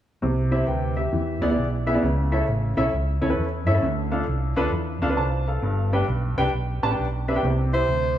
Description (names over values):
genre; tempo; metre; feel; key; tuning
uptempo gospel; 133 BPM; 4/4; swing 65% on 8ths; C major; A4 = 437 Hz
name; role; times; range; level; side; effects
warm upright piano; accompaniment; 0.2-8.1 s; G2 to A5; -24 LUFS; equal; none
fingered electric bass; bass; 0.2-8.1 s; G1 to G2; -24 LUFS; equal; none
breathy alto saxophone; melody; 7.7-8.2 s; C5; -22 LUFS; right 2 dB; slapback echo
room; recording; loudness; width
moderate echo chamber reverb, RT60 2.7 s; none; -21 LUFS; side -11 dB against mid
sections
0.2-7.4 A section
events
none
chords
0.2 C; 1.1 E7; 2.0 A; 3.8 Dm; 5.6 G; 7.4 C